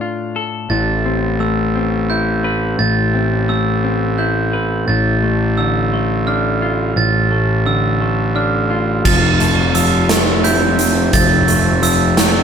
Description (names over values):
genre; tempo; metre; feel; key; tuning
post-rock; 58 BPM (dotted quarters); 6/8; straight; unclear; A4 = 439 Hz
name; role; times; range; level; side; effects
semi-hollow electric guitar; arpeggios; 0.0-12.4 s; A2 to B4; -19 LUFS; left 5 dB; none
glockenspiel with hard plastic mallets; arpeggios; 0.7-12.4 s; E6 to A6; -20 LUFS; right 7 dB; none
fuzz picked electric bass; bass; 0.7-12.4 s; F1 to A1; -17 LUFS; right 1 dB; overdrive
lush unison pad; sustained chords; 9.9-12.4 s; F3 to E5; -24 LUFS; right 1 dB; chorus
huge arena drum kit; drums; 9.1-12.3 s; crash cymbal, hi-hat, kick drum, snare drum; -16 LUFS; right 2 dB; none
room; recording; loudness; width
moderate studio ambience, RT60 0.5 s; band playing live in one room; -13 LUFS; side -7 dB against mid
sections
0.0-9.1 A section; 9.1-12.4 B section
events
none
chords
0.0 Dm/A; 0.7 Amadd9; 4.9 Dm/A; 9.1 Fmaj7